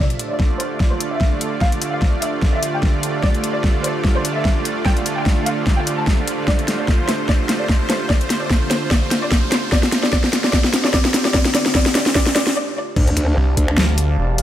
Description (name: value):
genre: heavy wobble dubstep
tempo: 148 BPM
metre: 4/4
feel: swing 55% on 16ths, half-time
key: D minor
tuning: A4 = 440 Hz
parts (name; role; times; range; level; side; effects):
- rich studio violin section; melody; 0.0-12.9 s; C5 to A5; -26 LUFS; equal; low-pass filter, dub echo
- supersaw pad; sustained chords; 0.0-14.4 s; D3 to A5; -25 LUFS; right 2 dB; sidechain pumping, low-pass filter
- riser and sub drop; sound effects; 0.0-14.4 s; none; -30 LUFS; equal; none
- warbly tape-like pad; texture; 0.0-14.4 s; D4 to F5; -30 LUFS; right 3 dB; chorus, built-in reverb, sidechain pumping
- dubstep drum kit; drums; 0.1-14.4 s; crash cymbal, finger snaps, hi-hat, snare drum; -20 LUFS; left 1 dB; overdrive, small room ambience
- electronic kick drum; drums; 0.4-13.7 s; none; -18 LUFS; equal; overdrive, small room ambience
- growl bass; bass; 13.0-13.8 s; D2; -18 LUFS; equal; chorus, overdrive
- snarling distorted saw bass; bass; 13.4-14.4 s; E1 to D2; -17 LUFS; equal; distortion, overdrive
room: light reverb, digital ambience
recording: none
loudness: -16 LUFS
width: side -12 dB against mid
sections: 0.0-13.0 A section; 13.0-14.4 B section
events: build-up 0.0-13.0; drum fill 0.0-12.6; riser 0.0-12.6; break 12.6-13.0; drop 13.0-14.4; impact 13.0-14.4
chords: 0.0 Dm